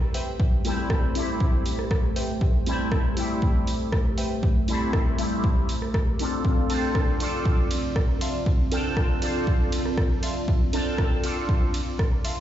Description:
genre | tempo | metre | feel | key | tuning
dub techno | 119 BPM | 4/4 | straight | A minor | A4 = 440 Hz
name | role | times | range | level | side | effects
deep dark ambient pad | sustained chords | 0.0-12.4 s | A3 to D5 | -31 LUFS | equal | chorus, built-in reverb, sidechain pumping
wavetable chord stab | riff | 0.1-4.4, 8.2-12.4 s | B4 to C6 | -38 LUFS | equal | sidechain pumping, dub echo
punchy analog drum machine | drums | 0.1-12.3 s | hi-hat, ride cymbal, rim click | -34 LUFS | right 1 dB | none
electronic kick drum | drums | 0.4-12.1 s | none | -24 LUFS | equal | none
resonant sweep polysynth | stabs | 0.6-11.5 s | G3 to A4 | -29 LUFS | left 1 dB | chorus, phaser, sidechain pumping, dub echo
room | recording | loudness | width
light reverb | played on a big sound system in a bare room, large studio reverb, nothing above 7.8 kHz | -22 LUFS | side -11 dB against mid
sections
0.0-12.4 A section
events
filter sweep on analog polysynth 0.0-12.4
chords
0.0 Am7; 6.4 Dm7

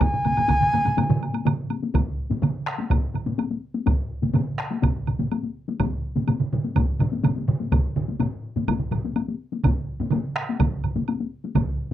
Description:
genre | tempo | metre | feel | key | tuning
japanese traditional, taiko drum ensemble | 125 BPM | 4/4 | straight | unclear | A4 = 435 Hz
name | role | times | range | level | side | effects
shakuhachi | melody | 0.0-1.5 s | Ab5 | -22 LUFS | equal | none
taiko ensemble | percussion | 0.0-11.7 s | none | -27 LUFS | left 6 dB | none
taiko ensemble | percussion | 0.0-11.9 s | none | -29 LUFS | left 2 dB | none
taiko ensemble | percussion | 0.0-11.7 s | none | -26 LUFS | right 4 dB | none
taiko ensemble | percussion | 0.0-11.7 s | none | -26 LUFS | right 1 dB | none
woodblock | percussion | 0.0-11.7 s | none | -34 LUFS | right 13 dB | none
room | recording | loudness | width
light reverb | dry, close 1970s-style studio recording | -22 LUFS | side -12 dB against mid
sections
0.0-1.9 A section; 1.9-11.9 B section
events
none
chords
none

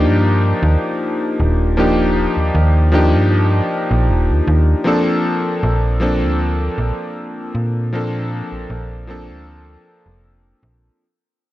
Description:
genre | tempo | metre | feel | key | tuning
vaporwave | 78 BPM | 4/4 | straight | Bb major | A4 = 439 Hz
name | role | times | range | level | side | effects
clear electric grand piano | accompaniment | 0.0-11.0 s | F3 to A4 | -18 LUFS | left 1 dB | wide subtle chorus, tape echo
slap-like FM bass | bass | 0.0-10.9 s | Eb1 to Bb2 | -16 LUFS | equal | none
room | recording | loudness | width
light reverb | cassette tape | -14 LUFS | side -15 dB against mid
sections
0.0-4.9 A section; 4.9-11.0 B section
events
fade-out 4.9-11.0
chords
0.0 Ebmaj9; 4.9 Bbmaj9

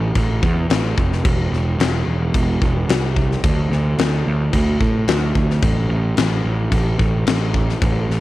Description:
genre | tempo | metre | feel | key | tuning
classic rock | 110 BPM | 4/4 | straight | A minor | A4 = 443 Hz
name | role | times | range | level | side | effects
fuzz picked electric bass | bass | 0.0-8.2 s | E1 to A2 | -18 LUFS | right 1 dB | overdrive
huge arena drum kit | drums | 0.2-8.2 s | crash cymbal, kick drum, snare drum | -20 LUFS | left 2 dB | none
room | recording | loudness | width
light reverb | 1960s-style stereo | -16 LUFS | side -16 dB against mid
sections
0.0-8.2 A section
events
none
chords
none

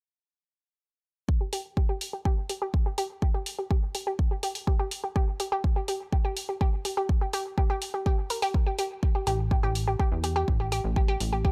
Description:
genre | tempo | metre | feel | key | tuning
melodic techno | 124 BPM | 4/4 | straight | unclear | A4 = 437 Hz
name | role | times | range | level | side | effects
electronic kick drum | drums | 1.3-11.5 s | none | -27 LUFS | equal | none
analog pluck | arpeggios | 1.4-11.5 s | G4 to Bb4 | -34 LUFS | equal | chorus, sidechain pumping, tape echo
electronic hi-hat | drums | 1.5-11.3 s | none | -37 LUFS | equal | sidechain pumping on hats
plucky analog bass | bass | 9.3-11.5 s | A1 to E2 | -31 LUFS | equal | sidechain pumping
room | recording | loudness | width
digital ambience | dry, gritty hardware recording | -28 LUFS | mono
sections
1.3-11.5 A section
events
filter sweep on synth pluck 1.3-11.5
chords
1.3 N.C.; 9.0 A5

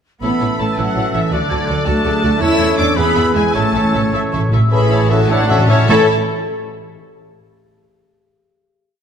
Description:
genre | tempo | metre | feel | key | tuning
cinematic, heroic adventure film score | 99-111 BPM (dotted quarters) | 6/8 | straight | A major | A4 = 440 Hz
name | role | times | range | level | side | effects
rich symphonic violin section | melody | 0.2-6.1 s | D5 to E6 | -23 LUFS | left 3 dB | none
mellow clarinet | second line | 0.2-6.1 s | F#4 to C#5 | -26 LUFS | left 2 dB | none
mellow flute section | second line | 0.2-6.1 s | A5 to G#6 | -26 LUFS | left 2 dB | none
warm oboe | second line | 0.2-6.1 s | B4 to E5 | -24 LUFS | right 1 dB | none
warm symphonic violin section | second line | 0.2-6.1 s | G#4 to A5 | -28 LUFS | left 2 dB | none
rich symphonic viola section | accompaniment | 0.2-6.1 s | A3 to C#5 | -24 LUFS | right 1 dB | none
warm French horn section | sustained chords | 0.2-6.1 s | D3 to B4 | -21 LUFS | left 5 dB | none
warm trombone section | sustained chords | 0.2-6.1 s | E3 to E4 | -26 LUFS | right 4 dB | none
warm trumpet | stabs | 0.2-6.1 s | C#4 to A4 | -23 LUFS | right 1 dB | none
warm symphonic cello section | bass | 0.2-6.1 s | A2 to E4 | -22 LUFS | right 3 dB | none
warm symphonic double bass section | bass | 0.2-6.1 s | A1 to E2 | -21 LUFS | right 3 dB | none
timpani | percussion | 3.6-6.1 s | A2 | -18 LUFS | left 1 dB | none
room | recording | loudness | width
wet scoring stage reverb, RT60 1.9 s | none | -12 LUFS | side -8 dB against mid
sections
0.2-4.7 theme; 4.7-5.9 outro; 5.9-7.1 final chord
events
slowing down 3.0-5.9; timpani fill 3.6-4.7, 4.7-5.9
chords
0.2 A; 1.3 D; 2.4 A/E; 3.0 E; 3.6 A

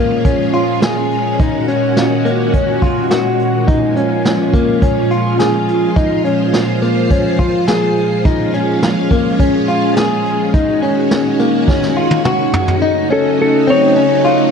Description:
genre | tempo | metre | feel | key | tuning
dream pop | 105 BPM | 4/4 | straight | Db major | A4 = 442 Hz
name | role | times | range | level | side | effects
string machine, violins | sustained chords | 0.0-14.5 s | Bb2 to C5 | -16 LUFS | right 2 dB | ensemble chorus
direct-recorded clean electric guitar | arpeggios | 0.0-14.5 s | Bb3 to Ab4 | -16 LUFS | left 4 dB | lush chorus, ping-pong delay
vintage brush drum kit | drums | 0.2-12.8 s | hi-hat, kick drum, snare drum, toms | -17 LUFS | right 1 dB | none
clean lap steel guitar | melody | 13.1-14.5 s | A4 to Db5 | -14 LUFS | equal | ping-pong delay
room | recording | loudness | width
moderate plate reverb, RT60 1.6 s, small room ambience | none | -12 LUFS | side -6 dB against mid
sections
0.0-12.8 A section; 12.8-14.5 B section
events
drum fill 11.7-12.8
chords
0.0 Bbm7; 1.4 Ab9sus4; 3.7 Db6; 8.2 Bbm7; 10.5 Ab9sus4; 12.8 Gbm6

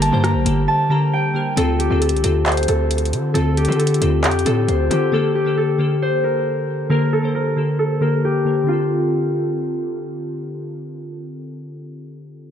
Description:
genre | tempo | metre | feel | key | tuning
hip hop, trap | 135 BPM | 4/4 | half-time | D minor | A4 = 440 Hz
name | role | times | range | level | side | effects
concert harp | melody | 0.0-11.2 s | F4 to C6 | -21 LUFS | left 1 dB | low-pass filter
glassy digital keys | accompaniment | 0.0-12.5 s | D3 to C5 | -21 LUFS | left 1 dB | chorus, low-pass filter
airy breathy pad | sustained chords | 0.0-1.5 s | G3 to G4 | -30 LUFS | right 1 dB | chorus
distorted 808-style bass | bass | 0.0-5.1 s | G1 to D3 | -20 LUFS | equal | distortion
trap drum kit | drums | 0.0-5.0 s | handclaps, hi-hat, rim click | -24 LUFS | right 1 dB | none
room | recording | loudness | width
little or no reverb | dark, warm production | -16 LUFS | side -9 dB against mid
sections
0.0-1.6 A section; 1.6-8.7 B section; 8.7-12.2 C section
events
drums muted 0.7-1.6; filter sweep 1.6-8.7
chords
0.0 Gmadd9; 1.6 Dm7; 5.1 Gmadd9; 8.7 Dm7

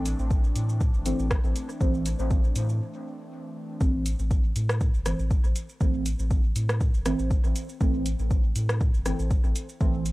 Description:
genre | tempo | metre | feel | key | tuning
dub techno | 120 BPM | 4/4 | swing 54% on 16ths | A minor | A4 = 440 Hz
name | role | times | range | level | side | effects
airy breathy pad | sustained chords | 0.0-3.8 s | E3 to D4 | -38 LUFS | equal | chorus, sidechain pumping
deep mellow chord stab | stabs | 0.0-10.0 s | E3 to C4 | -32 LUFS | right 1 dB | chorus, phaser, sidechain pumping, dub echo
warm sub bass | bass | 0.0-10.1 s | G1 to A2 | -27 LUFS | equal | sidechain pumping
deep house drum kit | drums | 0.1-10.1 s | hi-hat, rim click, shaker | -34 LUFS | equal | overdrive, dub echo
electronic kick drum | drums | 0.3-9.9 s | none | -24 LUFS | equal | overdrive
room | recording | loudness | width
little or no reverb | dry, gritty hardware recording, cassette tape | -23 LUFS | side -19 dB against mid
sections
0.0-3.8 A section; 3.8-10.1 A section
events
break 2.8-3.8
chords
0.0 Am

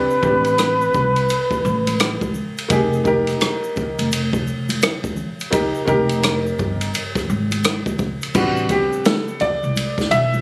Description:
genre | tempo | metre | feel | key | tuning
hip hop, jazz-hop | 85 BPM | 4/4 | swing 63% on 16ths | unclear | A4 = 443 Hz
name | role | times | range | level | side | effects
breathy flugelhorn | melody | 0.0-2.4 s | B4 | -18 LUFS | equal | none
warm upright piano | accompaniment | 0.0-10.4 s | G3 to E5 | -20 LUFS | equal | none
egg shaker and congas | percussion | 0.1-10.4 s | none | -30 LUFS | equal | none
upright bass | bass | 0.2-10.4 s | F1 to C2 | -22 LUFS | equal | none
open jazz drum kit | drums | 0.2-10.3 s | crash cymbal, hi-hat, kick drum, ride cymbal, rim click, snare drum | -22 LUFS | equal | none
room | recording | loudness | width
light reverb | recorded on a phone in the room, club reverb, compression | -17 LUFS | side -29 dB against mid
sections
0.0-8.3 A section; 8.3-10.4 B section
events
upright piano solo 8.3-10.4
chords
0.0 Am11; 2.7 Fm11; 8.3 Am11

